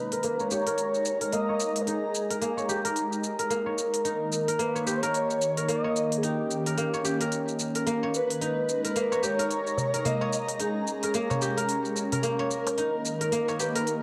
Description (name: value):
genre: organic downtempo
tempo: 110 BPM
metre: 4/4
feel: swing 59% on 16ths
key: unclear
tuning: A4 = 440 Hz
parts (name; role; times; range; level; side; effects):
- breathy flute-like synth lead; melody; 0.0-14.0 s; G4 to Eb5; -33 LUFS; equal; ensemble chorus, tape echo
- airy breathy pad; sustained chords; 0.0-14.0 s; Eb3 to Bb5; -34 LUFS; equal; chorus, phaser, cassette tape
- guzheng; arpeggios; 0.0-14.0 s; Bb3 to Db5; -32 LUFS; equal; low-pass filter, cassette tape, tape echo
- electronic hi-hat and shaker; drums; 0.1-14.0 s; none; -36 LUFS; equal; overdrive, cassette tape
- darbuka; percussion; 9.1-13.6 s; none; -37 LUFS; equal; none
room: wet spring reverb, RT60 1.6 s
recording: home recording on cassette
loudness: -28 LUFS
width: mono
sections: 0.0-14.0 A section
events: filter sweep on guzheng 0.0-14.0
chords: 0.0 Absus2; 4.1 Eb7; 8.4 Absus2; 12.8 Eb7